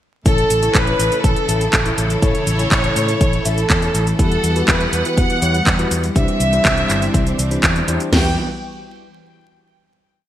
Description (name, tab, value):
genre	italo disco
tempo	122 BPM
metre	4/4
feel	straight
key	E dorian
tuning	A4 = 440 Hz
part	warm chamber violin section	melody	0.3-8.4 s	A4 to G5	-21 LUFS	equal	vintage 12-bit sampler grit, ping-pong delay
part	rich symphonic string section	sustained chords	0.3-8.4 s	C#3 to F#5	-24 LUFS	equal	none
part	bell-like tine electric piano	stabs	0.3-8.3 s	C#4 to E5	-25 LUFS	left 3 dB	ensemble chorus
part	fingered electric bass	bass	0.3-8.4 s	G1 to A2	-20 LUFS	equal	none
part	house drum kit	drums	0.3-8.2 s	crash cymbal, kick drum, snare drum, toms	-18 LUFS	equal	gated reverb
part	house drum kit	drums	0.3-8.1 s	cabasa, handclaps, hi-hat	-20 LUFS	right 1 dB	gated reverb
room	moderate plate reverb, RT60 2.0 s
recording	bright 1980s-style digital production, vinyl crackle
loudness	-14 LUFS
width	side -12 dB against mid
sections	0.3-8.1 chorus; 8.1-10.1 final chord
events	none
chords	0.3 A; 4.2 Emadd9; 6.2 Cadd9; 8.1 Emadd9